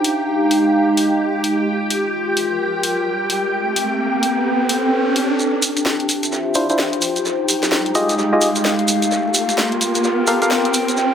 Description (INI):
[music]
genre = UK garage, two-step garage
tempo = 129 BPM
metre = 4/4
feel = swing 61% on 16ths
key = unclear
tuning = A4 = 441 Hz
[part]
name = soft string machine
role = sustained chords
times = 0.0-11.1 s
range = G4 to G5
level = -24 LUFS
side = equal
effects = ensemble chorus
[part]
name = garage drum kit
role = drums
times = 0.0-11.0 s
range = finger snaps, hi-hat, snare drum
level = -22 LUFS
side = left 1 dB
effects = high-pass filter on hats, studio reverb, high-pass filter on snare, dub echo
[part]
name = warbly tape-like pad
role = texture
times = 0.0-11.1 s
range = Ab3 to G5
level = -19 LUFS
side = equal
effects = chorus, built-in reverb
[part]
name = riser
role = sound effects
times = 2.7-11.1 s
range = none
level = -24 LUFS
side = equal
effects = none
[part]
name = maracas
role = percussion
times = 5.4-11.1 s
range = none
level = -23 LUFS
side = right 2 dB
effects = dub echo
[part]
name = percussive organ stab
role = stabs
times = 6.6-10.5 s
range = D4 to F5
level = -19 LUFS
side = equal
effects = chorus, analog delay
[sound]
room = wet spring reverb, RT60 2.1 s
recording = echo-heavy mix, high-pass filter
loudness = -16 LUFS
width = side -8 dB against mid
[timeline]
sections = 0.0-5.4 A section; 5.4-11.1 B section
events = riser 2.7-5.4, 5.4-11.1; build-up 5.4-11.1; filter sweep on synth stab 5.4-11.1; filter sweep on string machine 5.4-11.1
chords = 0.0 Fm9; 5.4 Dm9; 7.0 Fm9; 9.1 Gm9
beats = 0.28 0.74 1.21 | 1.67 2.14 2.60 3.07 | 3.53 4.00 4.46 4.93 | 5.39 5.86 6.32 6.79 | 7.25 7.72 8.18 8.65 | 9.11 9.58 10.04 10.51 | 10.97